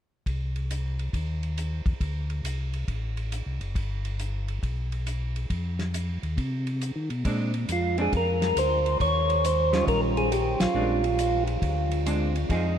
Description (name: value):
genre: soul jazz organ trio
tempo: 137 BPM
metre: 4/4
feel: swing 66% on 8ths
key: Bb mixolydian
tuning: A4 = 440 Hz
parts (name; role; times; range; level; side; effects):
- mellow tonewheel organ; bass; 0.3-12.8 s; Gb1 to Eb3; -28 LUFS; equal; chorus vibrato, slow rotary speaker
- warm soul drum kit; drums; 0.3-12.6 s; hi-hat, kick drum, ride cymbal, snare drum; -33 LUFS; equal; none
- vintage hollow-body jazz guitar; accompaniment; 7.2-12.8 s; Eb3 to Ab4; -31 LUFS; right 1 dB; none
- percussive tonewheel organ; melody; 7.7-11.4 s; F4 to Db5; -25 LUFS; right 1 dB; slow rotary speaker
room: moderate cathedral reverb, RT60 6.8 s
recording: in a vast, echoing space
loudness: -24 LUFS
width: side -9 dB against mid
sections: 0.3-7.3 A section; 7.3-12.8 B section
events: band accent 10.5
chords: 0.3 Cm; 2.0 D5; 3.8 G; 5.5 F5; 7.3 Bb9; 9.0 Eb9; 10.7 Bb9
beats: | 0.26 0.70 1.14 1.57 | 2.01 2.44 2.88 3.32 | 3.75 4.19 4.63 5.07 | 5.50 5.94 6.38 6.81 | 7.25 7.69 8.12 8.56 | 9.00 9.44 9.87 10.31 | 10.75 11.18 11.62 12.06 | 12.49